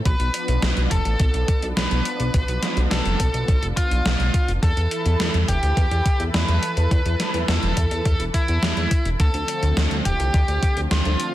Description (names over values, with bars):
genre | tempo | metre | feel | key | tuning
synthwave | 105 BPM | 4/4 | straight | unclear | A4 = 445 Hz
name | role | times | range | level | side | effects
nasal lead guitar with a parked wah | melody | 0.1-11.3 s | E4 to B4 | -26 LUFS | equal | overdrive, digital delay
analog string pad | sustained chords | 0.1-11.3 s | D3 to B4 | -30 LUFS | left 1 dB | ensemble chorus, sidechain pumping
chorused synth bass | bass | 0.1-11.2 s | D1 to E2 | -22 LUFS | equal | none
electronic kick drum | drums | 0.1-10.7 s | none | -21 LUFS | equal | overdrive
gated 80s digital drum machine | drums | 0.1-11.3 s | hi-hat, snare drum | -25 LUFS | right 1 dB | gated reverb, gated reverb snare, overdrive
room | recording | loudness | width
light reverb | dense, heavily limited modern master | -18 LUFS | side -14 dB against mid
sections
0.0-11.3 A section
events
none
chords
0.1 Bdim; 4.6 Esus4; 9.2 Dm7